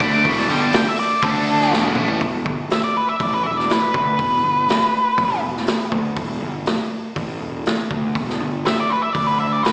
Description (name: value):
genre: blues rock power trio and southern rock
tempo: 121 BPM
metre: 4/4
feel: straight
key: E minor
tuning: A4 = 440 Hz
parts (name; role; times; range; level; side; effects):
- octave-fuzz lead guitar; melody; 0.0-5.4, 8.7-9.7 s; A4 to D6; -22 LUFS; equal; distortion, slapback echo, analog delay
- biting overdriven guitar; riff; 0.0-2.2 s; E2 to D4; -23 LUFS; equal; slapback echo
- fuzz picked electric bass; bass; 0.0-9.7 s; E1 to D2; -26 LUFS; equal; overdrive
- vintage drum kit; drums; 0.0-9.7 s; hi-hat, kick drum, snare drum, toms; -25 LUFS; equal; slapback echo
room: moderate club reverb, RT60 0.7 s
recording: live gig heard through the venue's PA, recital hall reverb, small speaker sound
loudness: -20 LUFS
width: mono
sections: 0.0-2.2 A section; 2.2-9.7 B section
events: lead electric guitar solo 0.0-2.2; drum fill 1.7-2.2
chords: 0.0 Em; 1.2 D5; 1.7 E5; 2.2 Em; 9.1 Bmadd11/D